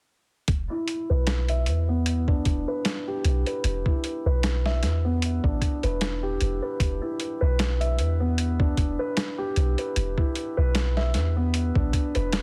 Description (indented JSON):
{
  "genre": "trip hop",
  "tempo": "76 BPM",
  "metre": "4/4",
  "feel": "swing 55% on 16ths",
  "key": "E minor",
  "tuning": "A4 = 440 Hz",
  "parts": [
    { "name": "soft 808-style bass", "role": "bass", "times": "0.5-12.4 s", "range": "E1 to E2", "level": "-27 LUFS", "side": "equal", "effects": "none" },
    { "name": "boom bap sampler-style drum kit", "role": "drums", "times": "0.5-12.4 s", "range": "hi-hat, kick drum, snare drum", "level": "-29 LUFS", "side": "equal", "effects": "none" },
    { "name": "felt-muted upright piano", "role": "arpeggios", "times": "0.7-12.4 s", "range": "B3 to E5", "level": "-31 LUFS", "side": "equal", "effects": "vintage 12-bit sampler grit, low-pass filter, delay" }
  ],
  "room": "little or no reverb",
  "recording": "heavily compressed radio sound, multiband compression",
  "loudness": "-25 LUFS",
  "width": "mono",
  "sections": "0.5-12.4 A section",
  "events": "filter sweep on felt piano 0.5-12.4",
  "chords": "0.5 Em7"
}